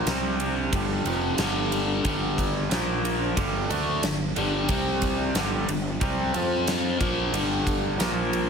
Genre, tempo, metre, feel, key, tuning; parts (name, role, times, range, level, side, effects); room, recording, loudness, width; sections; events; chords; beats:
classic rock; 91 BPM; 4/4; straight; A4 = 443 Hz
overdriven electric guitar; riff; 0.0-8.5 s; F2 to F4; -28 LUFS; left 9 dB; phaser
overdriven electric guitar; riff; 0.0-8.5 s; F2 to F4; -29 LUFS; right 11 dB
fuzz fingered electric bass; bass; 0.0-8.5 s; F1 to F2; -30 LUFS; equal; overdrive
huge arena drum kit; drums; 0.1-8.5 s; kick drum, ride cymbal, snare drum; -28 LUFS; right 1 dB
light reverb, studio ambience; -23 LUFS; side -6 dB against mid
0.0-8.5 A section
0.1 C5; 0.7 G5; 2.7 Bb5; 3.4 G5; 4.7 C5; 5.3 G5; 6.3 F5; 7.0 G5; 8.0 Bb5
0.07 0.73 1.39 | 2.05 2.71 3.37 4.03 | 4.69 5.35 6.01 6.67 | 7.33 7.99